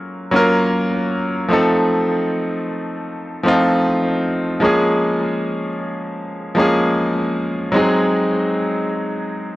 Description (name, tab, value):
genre	R&B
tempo	77 BPM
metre	4/4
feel	straight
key	Bb minor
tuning	A4 = 440 Hz
part	bright concert grand piano	solo	0.0-9.6 s	F3 to Bb4	-16 LUFS	equal	analog delay
room	small room ambience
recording	dry, gritty hardware recording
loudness	-16 LUFS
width	side -17 dB against mid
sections	0.0-9.6 A section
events	none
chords	0.0 Gbmaj7; 1.5 F7; 4.6 Bbm7; 7.7 Ab7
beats	0.72 | 1.50 2.28 3.06 3.84 | 4.62 5.40 6.18 6.96 | 7.73 8.51 9.29